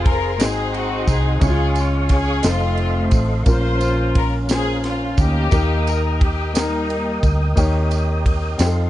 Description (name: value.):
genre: slow gospel.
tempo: 58 BPM (dotted quarters).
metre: 6/8.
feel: straight.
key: unclear.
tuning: A4 = 440 Hz.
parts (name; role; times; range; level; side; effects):
warm studio string section; melody; 0.0-7.5 s; G3 to C5; -23 LUFS; left 2 dB; none.
warm upright piano; accompaniment; 0.0-8.9 s; Ab2 to Db5; -25 LUFS; left 2 dB; none.
mellow tonewheel organ; sustained chords; 0.0-8.9 s; Db4 to Eb6; -28 LUFS; right 1 dB; fast rotary speaker, chorus vibrato.
hollow-body short-scale fingered electric bass; bass; 0.0-8.9 s; F1 to F2; -20 LUFS; equal; none.
tight funk drum kit; drums; 0.1-8.8 s; kick drum, ride cymbal, snare drum; -20 LUFS; equal; none.
tambourine; percussion; 0.4-8.9 s; none; -32 LUFS; right 9 dB; none.
room: little or no reverb.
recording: nothing above 10.3 kHz.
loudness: -16 LUFS.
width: side -14 dB against mid.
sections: 0.0-8.9 A section.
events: none.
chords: 0.4 Ab7; 1.4 Db; 2.4 F7; 3.5 Bbm; 5.5 Eb.